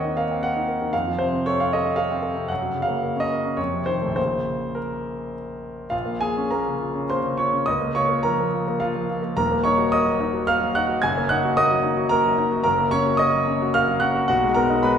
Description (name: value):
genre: classical, romantic character piece for solo piano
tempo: 98-118 BPM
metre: 3/4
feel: rubato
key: Bb minor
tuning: A4 = 442 Hz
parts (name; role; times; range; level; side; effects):
- clear concert grand piano; solo; 0.0-15.0 s; Eb1 to Ab6; -20 LUFS; equal; none
room: wet recital hall reverb, RT60 1.4 s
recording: heard from further back in the room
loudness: -20 LUFS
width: side -8 dB against mid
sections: 0.0-5.9 A section; 5.9-15.0 B section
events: none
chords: 0.0 Cm7b5/Eb; 0.9 F; 2.5 Gb; 3.6 F7; 4.2 Bbm; 7.7 Bbm/Db; 9.4 Ebm; 11.0 Ebm/Gb; 12.6 Gb; 14.3 B6